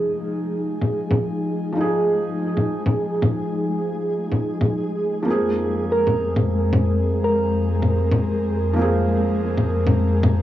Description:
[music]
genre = future garage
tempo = 137 BPM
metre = 4/4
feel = swing 67% on 16ths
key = F minor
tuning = A4 = 439 Hz
[part]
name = felt-muted upright piano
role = accompaniment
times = 0.0-10.4 s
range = F3 to Ab4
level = -27 LUFS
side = right 2 dB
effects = low-pass filter, cassette tape, tape echo
[part]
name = airy breathy pad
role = sustained chords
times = 0.0-10.4 s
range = F2 to Bb4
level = -22 LUFS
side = equal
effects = chorus, cassette tape
[part]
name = flickering grainy texture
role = texture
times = 0.0-10.4 s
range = Ab3 to Ab4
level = -31 LUFS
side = equal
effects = built-in reverb, cassette tape
[part]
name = bongos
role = drums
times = 0.8-10.3 s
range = none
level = -20 LUFS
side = left 1 dB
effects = low-pass filter on hats, small room reverb, cassette tape, low-pass filter on perc, low-pass filter on snare
[part]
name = soft struck synth lead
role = melody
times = 5.9-7.9 s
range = Bb4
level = -25 LUFS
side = right 2 dB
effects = chorus, vintage 12-bit sampler grit, tape echo
[sound]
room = moderate small room ambience, RT60 0.5 s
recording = home recording on cassette, small room ambience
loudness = -19 LUFS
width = side -13 dB against mid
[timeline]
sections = 0.0-10.4 A section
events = filter sweep on analog synth pad 0.0-10.4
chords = 0.0 Fm7; 5.3 Abadd9/F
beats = | 0.01 0.45 0.89 1.33 | 1.76 2.20 2.64 3.08 | 3.52 3.96 4.39 4.83 | 5.27 5.71 6.14 6.58 | 7.02 7.46 7.90 8.34 | 8.77 9.21 9.65 10.09

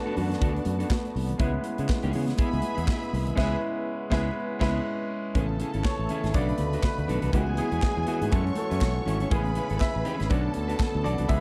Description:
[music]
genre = disco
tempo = 121 BPM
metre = 4/4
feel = swing 56% on 16ths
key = B dorian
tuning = A4 = 440 Hz
[part]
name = rich studio string section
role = second line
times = 0.0-11.4 s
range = F#4 to C#6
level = -38 LUFS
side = equal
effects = none
[part]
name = clear baby grand piano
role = accompaniment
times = 0.0-11.4 s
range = C#3 to E5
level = -35 LUFS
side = equal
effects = none
[part]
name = mellow French horn section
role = sustained chords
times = 0.0-11.4 s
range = B2 to F#4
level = -38 LUFS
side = equal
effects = none
[part]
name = electric guitar at the edge of break-up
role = accompaniment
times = 0.1-11.4 s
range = B3 to B4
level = -37 LUFS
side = equal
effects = none
[part]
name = fingered electric bass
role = bass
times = 0.2-11.4 s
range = G#1 to C#3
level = -31 LUFS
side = equal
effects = none
[part]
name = modern studio drum kit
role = drums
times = 0.2-11.4 s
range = crash cymbal, handclaps, hi-hat, kick drum, snare drum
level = -31 LUFS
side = equal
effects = none
[part]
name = congas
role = percussion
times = 0.2-11.4 s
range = none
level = -41 LUFS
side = equal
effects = none
[sound]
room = light reverb, small room reverb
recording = dark, warm production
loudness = -27 LUFS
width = mono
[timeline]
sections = 0.0-5.3 A section; 5.3-11.4 B section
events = band accent 3.4-5.3; grand piano solo 5.3-11.4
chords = 0.0 Bm7; 1.4 C#m7; 5.3 Amaj7; 6.3 Bm7; 7.3 C#m7; 8.3 F#m7; 9.3 Amaj7; 10.3 Bm7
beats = 0.41 0.91 | 1.40 1.89 2.39 2.88 | 3.37 3.87 4.36 4.86 | 5.35 5.84 6.34 6.83 | 7.33 7.83 8.32 8.82 | 9.31 9.81 10.30 10.80 | 11.29

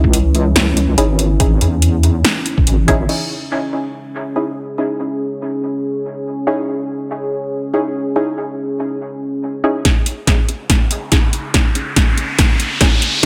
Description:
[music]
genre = deep dubstep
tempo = 142 BPM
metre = 4/4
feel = swing 56% on 16ths, half-time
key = C# minor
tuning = A4 = 439 Hz
[part]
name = dark analog pad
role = sustained chords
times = 0.0-13.3 s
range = E3 to G#4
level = -25 LUFS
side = equal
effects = chorus
[part]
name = filtered dub chord stab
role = stabs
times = 0.0-13.3 s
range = C#4 to G#4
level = -24 LUFS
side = equal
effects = chorus, dub echo
[part]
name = deep soft wobble bass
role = bass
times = 0.0-3.1 s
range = G#1 to E2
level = -17 LUFS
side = equal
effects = chorus
[part]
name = electronic kick drum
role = drums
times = 0.0-3.0, 9.8-13.3 s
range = none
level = -17 LUFS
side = equal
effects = none
[part]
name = deep house drum kit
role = drums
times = 0.1-3.2, 9.8-13.3 s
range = crash cymbal, hi-hat, snare drum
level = -20 LUFS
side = equal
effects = overdrive
[part]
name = riser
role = sound effects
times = 11.0-13.3 s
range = none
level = -23 LUFS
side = equal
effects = none
[sound]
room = light reverb, digital ambience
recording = none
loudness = -17 LUFS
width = mono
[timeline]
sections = 0.0-3.1 A section; 3.1-9.9 B section; 9.9-13.3 C section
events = build-up 9.9-13.3; drum fill 9.9-13.3; riser 11.0-13.3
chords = 0.0 C#madd9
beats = 0.13 0.56 0.98 | 1.40 1.82 2.25 2.67 | 3.09 3.51 3.94 4.36 | 4.78 5.20 5.63 6.05 | 6.47 6.89 7.32 7.74 | 8.16 8.58 9.01 9.43 | 9.85 10.27 10.70 11.12 | 11.54 11.96 12.39 12.81 | 13.23

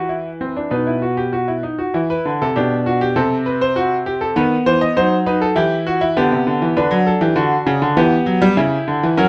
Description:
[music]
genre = classical, baroque-style 3-part fugue for grand piano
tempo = 99 BPM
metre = 4/4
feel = straight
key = E minor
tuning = A4 = 440 Hz
[part]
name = bright concert grand piano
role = solo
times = 0.0-9.3 s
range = B2 to D#5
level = -17 LUFS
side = equal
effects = none
[sound]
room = light reverb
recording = dark, warm production, faint mains hum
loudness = -17 LUFS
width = mono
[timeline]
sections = 0.0-1.9 A section; 1.9-9.3 B section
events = none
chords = 0.0 Bsus4/E; 0.7 B; 1.9 Em; 3.2 Am/C; 4.4 B7/D#; 5.6 Em; 6.8 Bm/D; 8.0 Em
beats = 0.10 0.72 1.33 | 1.95 2.56 3.16 3.76 | 4.36 4.97 5.57 6.16 | 6.76 7.37 7.97 8.57 | 9.18

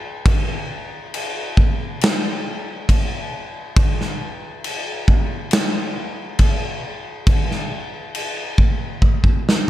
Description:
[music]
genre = metal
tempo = 68 BPM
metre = 4/4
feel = straight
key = none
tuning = none
[part]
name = big rock drum kit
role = drums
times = 0.3-9.7 s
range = crash cymbal, kick drum, snare drum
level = -18 LUFS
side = equal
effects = none
[sound]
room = little or no reverb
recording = none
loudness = -18 LUFS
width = side -14 dB against mid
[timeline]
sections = 0.0-9.7 A section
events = drum fill 9.0-9.7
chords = none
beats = | 0.24 1.12 2.00 2.88 | 3.75 4.63 5.51 6.39 | 7.26 8.14 9.02

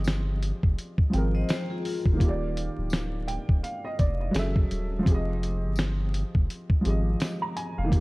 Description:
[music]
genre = lo-fi hip hop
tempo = 84 BPM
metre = 4/4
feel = swing 60% on 16ths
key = unclear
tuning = A4 = 442 Hz
[part]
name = dark upright piano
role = accompaniment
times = 0.0-8.0 s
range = Eb3 to Bb5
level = -31 LUFS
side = right 1 dB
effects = cassette tape
[part]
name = soft dub sub bass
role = bass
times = 0.0-8.0 s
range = D1 to Ab1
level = -28 LUFS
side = equal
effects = none
[part]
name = tambourine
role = percussion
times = 0.0-7.4 s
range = none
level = -50 LUFS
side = left 4 dB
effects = none
[part]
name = dusty soul sampler-style drum kit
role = drums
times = 0.1-8.0 s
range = hi-hat, kick drum, snare drum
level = -25 LUFS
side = equal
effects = none
[part]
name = vibraphone with medium hard mallets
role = second line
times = 1.3-2.2 s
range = F4 to Eb5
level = -36 LUFS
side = left 5 dB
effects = analog delay
[sound]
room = light reverb, studio ambience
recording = vinyl crackle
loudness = -24 LUFS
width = side -22 dB against mid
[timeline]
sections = 0.0-8.0 A section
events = none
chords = 0.0 Fm7; 2.2 Ebmaj7; 4.3 Gbm7; 5.1 Fm7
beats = 0.06 0.78 1.49 | 2.20 2.92 3.63 4.35 | 5.06 5.78 6.49 7.20 | 7.92

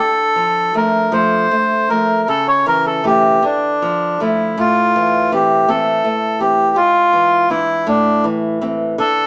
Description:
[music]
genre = romantic duo for bandoneon and classical guitar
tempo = 54 BPM (dotted quarters)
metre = 6/8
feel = uneven beats, rubato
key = D minor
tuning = A4 = 441 Hz
[part]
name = bandoneon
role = melody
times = 0.0-9.3 s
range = D4 to C#5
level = -16 LUFS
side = equal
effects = none
[part]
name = nylon-string guitar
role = accompaniment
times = 0.0-9.3 s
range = G#2 to D4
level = -21 LUFS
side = equal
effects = none
[sound]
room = moderate stone room reverb, RT60 1.0 s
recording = band playing live in one room, small speaker sound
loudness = -15 LUFS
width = mono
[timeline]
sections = 0.0-9.3 A section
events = none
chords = 0.0 Dm; 2.3 A/C#; 3.4 Dm; 4.6 Am; 6.8 E7/G#; 7.9 Am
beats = 1.12 | 2.27 3.43 | 4.58 5.68 | 6.76 7.88 | 8.99

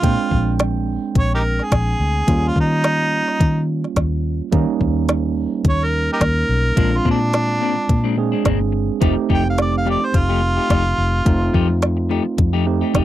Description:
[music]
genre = straight-eighth soul blues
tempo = 107 BPM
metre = 4/4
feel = swing 54% on 16ths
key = Bb mixolydian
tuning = A4 = 441 Hz
[part]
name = warm harmonica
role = melody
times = 0.0-11.8 s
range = D4 to G5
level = -21 LUFS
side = right 1 dB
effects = overdrive
[part]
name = overdriven tine electric piano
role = accompaniment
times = 0.0-13.0 s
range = G3 to G5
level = -22 LUFS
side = moving between equal and right 10 dB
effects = auto-pan
[part]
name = vintage muted fingered electric bass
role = bass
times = 0.0-13.0 s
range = F1 to Eb3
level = -20 LUFS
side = left 1 dB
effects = none
[part]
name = organic electronic drum kit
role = drums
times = 0.0-13.0 s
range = hi-hat, kick drum, snare drum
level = -18 LUFS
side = left 1 dB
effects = none
[part]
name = clean electric guitar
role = stabs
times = 6.8-13.0 s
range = Bb2 to G4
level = -23 LUFS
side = left 10 dB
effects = none
[sound]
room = little or no reverb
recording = dry, close 1970s-style studio recording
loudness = -16 LUFS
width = side -13 dB against mid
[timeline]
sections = 0.0-13.0 A section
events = harmonica solo 0.0-13.0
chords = 0.0 Bb9; 2.3 Eb9; 6.8 Bb9; 9.0 F9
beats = | 0.03 0.59 1.16 1.72 | 2.28 2.84 3.40 3.97 | 4.53 5.09 5.65 6.21 | 6.77 7.33 7.90 8.46 | 9.02 9.58 10.14 10.70 | 11.26 11.82 12.38 12.95

